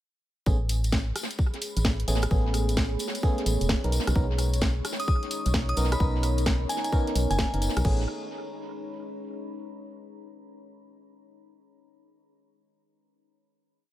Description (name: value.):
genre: UK garage, two-step garage.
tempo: 130 BPM.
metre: 4/4.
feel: swing 65% on 16ths.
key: A major.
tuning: A4 = 440 Hz.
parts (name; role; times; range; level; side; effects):
FM electric piano; stabs; 0.5-8.0 s; A3 to Bb4; -32 LUFS; right 2 dB; chorus, tape echo.
organ-like FM bass; bass; 0.5-8.1 s; E1 to B1; -26 LUFS; equal; none.
electronic kick drum; drums; 0.5-8.0 s; none; -26 LUFS; equal; small room ambience.
tambourine; percussion; 0.5-7.8 s; none; -39 LUFS; left 3 dB; none.
deep dark ambient pad; texture; 1.3-9.7 s; D#4 to B5; -37 LUFS; left 1 dB; chorus, built-in reverb, sidechain pumping.
garage drum kit; drums; 0.7-8.0 s; crash cymbal, hi-hat, rim click, snare drum; -31 LUFS; equal; small room ambience, tape echo.
glassy synth bell; melody; 5.0-7.5 s; G#5 to D#6; -33 LUFS; left 1 dB; chorus, tape echo.
room: light reverb.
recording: echo-heavy mix.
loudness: -24 LUFS.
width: side -14 dB against mid.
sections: 0.5-7.8 drop; 7.8-9.7 final chord.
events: drop 0.5-7.8.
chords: 0.5 Amaj9; 3.9 Bmaj9; 7.8 Amaj9.